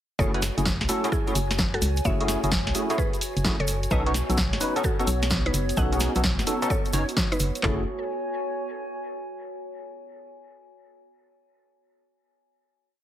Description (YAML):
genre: UK garage, two-step garage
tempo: 129 BPM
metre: 4/4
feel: swing 66% on 16ths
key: F# dorian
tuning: A4 = 440 Hz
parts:
  - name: mallet-like synth pluck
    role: melody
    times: 0.2-7.8 s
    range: D#4 to F#5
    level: -34 LUFS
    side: equal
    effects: chorus, dub echo
  - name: barky tine electric piano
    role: stabs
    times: 0.2-7.8 s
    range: A3 to C#5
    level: -28 LUFS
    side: equal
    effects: ensemble chorus, ping-pong delay
  - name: organ-like FM bass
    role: bass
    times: 0.2-7.8 s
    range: F#1 to C#2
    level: -27 LUFS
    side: equal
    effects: sidechain pumping
  - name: punchy analog drum machine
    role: drums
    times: 0.2-7.8 s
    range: handclaps, kick drum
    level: -28 LUFS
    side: equal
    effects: none
  - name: tube shaker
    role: percussion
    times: 0.2-7.6 s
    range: none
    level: -37 LUFS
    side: right 1 dB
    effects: none
  - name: warbly tape-like pad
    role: texture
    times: 0.2-9.5 s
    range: B3 to G#5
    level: -34 LUFS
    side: equal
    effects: chorus, built-in reverb, sidechain pumping
  - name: punchy analog drum machine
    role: drums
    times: 0.3-7.6 s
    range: hi-hat, snare drum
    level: -28 LUFS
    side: equal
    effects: none
room: light reverb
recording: heavily compressed radio sound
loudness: -22 LUFS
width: side -12 dB against mid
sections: 0.2-7.6 drop; 7.6-9.5 final chord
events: drop 0.2-7.6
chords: 0.2 F#m9; 3.9 B9; 7.6 F#madd9